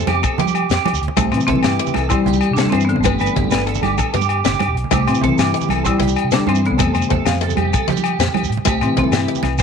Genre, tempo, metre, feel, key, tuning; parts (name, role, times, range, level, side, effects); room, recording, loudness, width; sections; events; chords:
highlife guitar band; 128 BPM (dotted quarters); 12/8; straight; C major; A4 = 441 Hz
marimba with medium hard mallets; melody; 0.0-9.6 s; C3 to E4; -20 LUFS; left 2 dB
breathy trombone; second line; 0.0-9.6 s; C3 to G3; -27 LUFS; left 12 dB
picked acoustic archtop guitar; accompaniment; 0.0-9.5 s; A3 to D4; -26 LUFS; left 13 dB
electric guitar at the edge of break-up; arpeggios; 0.0-9.6 s; G4 to F5; -23 LUFS; right 12 dB; ensemble chorus, tape echo
vintage muted fingered electric bass; bass; 0.0-9.6 s; E1 to F3; -22 LUFS; right 1 dB
shekere; percussion; 0.0-9.6 s; -27 LUFS; right 8 dB
tight funk drum kit; drums; 0.1-9.6 s; hi-hat, kick drum, snare drum; -23 LUFS; left 3 dB
agogo bells; percussion; 0.1-9.6 s; -24 LUFS; left 12 dB
congas; percussion; 0.1-9.6 s; -24 LUFS; right 12 dB
light reverb, small room ambience; 1960s-style stereo with parts hard left and right; -15 LUFS; side -6 dB against mid
0.0-9.6 A section
0.0 Fadd9; 1.2 C6; 3.0 G; 4.9 C6; 6.8 Fadd9; 8.7 C6